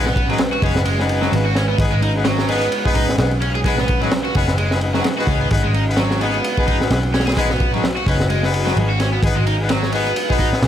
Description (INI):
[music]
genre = breakbeat, breaks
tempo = 129 BPM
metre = 4/4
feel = swing 56% on 16ths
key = G# minor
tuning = A4 = 440 Hz
[part]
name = dark analog pad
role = sustained chords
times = 0.0-10.7 s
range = G#3 to B4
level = -26 LUFS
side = right 1 dB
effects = chorus, sidechain pumping
[part]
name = cranked stack guitar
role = riff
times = 0.0-10.5 s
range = F#3 to G#4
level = -23 LUFS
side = right 1 dB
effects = overdrive, vintage 12-bit sampler grit, digital delay
[part]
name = brilliant horn section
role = stabs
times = 0.0-10.7 s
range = B3 to B4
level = -23 LUFS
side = left 4 dB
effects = digital delay
[part]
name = picked electric bass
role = bass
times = 0.0-10.7 s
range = F#1 to C#2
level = -20 LUFS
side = equal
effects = none
[part]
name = crunchy breakbeat drum kit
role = drums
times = 0.1-10.7 s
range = kick drum, ride cymbal, snare drum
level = -20 LUFS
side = equal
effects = none
[sound]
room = light reverb, small room ambience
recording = none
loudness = -15 LUFS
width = side -10 dB against mid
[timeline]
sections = 0.0-10.7 A section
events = none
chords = 0.0 G#m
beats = 0.39 0.86 1.32 | 1.79 2.25 2.72 3.19 | 3.65 4.12 4.58 5.04 | 5.51 5.98 6.44 6.91 | 7.37 7.84 8.30 8.77 | 9.23 9.70 10.16 10.63